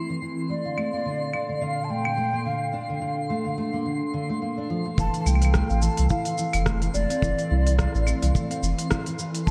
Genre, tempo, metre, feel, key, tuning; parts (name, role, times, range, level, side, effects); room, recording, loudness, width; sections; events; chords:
folktronica; 107 BPM; 4/4; swing 56% on 16ths; F major; A4 = 440 Hz
warbly tape-like pad; sustained chords; 0.0-9.5 s; Bb2 to A4; -36 LUFS; equal; chorus, built-in reverb, phaser
fingerpicked steel-string acoustic guitar; arpeggios; 0.0-9.5 s; D3 to E4; -32 LUFS; equal; subtle chorus, low-pass filter, delay
twinkling granular texture; texture; 0.0-9.5 s; C6; -41 LUFS; equal; built-in reverb
mellow hollow jazz flute; melody; 0.5-9.5 s; D5 to A5; -32 LUFS; equal; delay
marimba with medium mallets; second line; 0.7-9.3 s; F5; -40 LUFS; equal; diffuse ambient delay
minimal click drum kit; drums; 0.8-9.5 s; cabasa, claves, hi-hat, rim click; -34 LUFS; equal
warm sub bass; bass; 5.0-9.5 s; F1 to C2; -24 LUFS; equal
kick drum; drums; 5.0-9.5 s; -30 LUFS; equal
moderate plate reverb, RT60 3.0 s; dreamy mix soaked in reverb; -25 LUFS; mono
0.0-5.0 A section; 5.0-9.5 B section
filter sweep on ambient pad 0.0-5.0
0.5 Bbmaj7; 5.0 Fmaj7